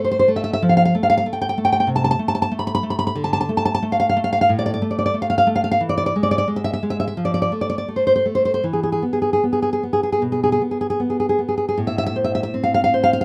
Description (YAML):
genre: romantic piece for solo classical guitar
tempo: 75-96 BPM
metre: 4/4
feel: rubato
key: A minor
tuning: A4 = 440 Hz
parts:
  - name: nylon-string guitar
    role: solo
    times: 0.0-13.2 s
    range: A2 to B5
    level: -20 LUFS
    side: equal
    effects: none
room: light reverb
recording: none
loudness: -20 LUFS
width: mono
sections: 0.0-11.8 A section; 11.8-13.2 B section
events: none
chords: 0.0 N.C.; 0.6 F; 3.2 D5; 5.8 E; 7.2 F; 8.6 E5; 11.8 Am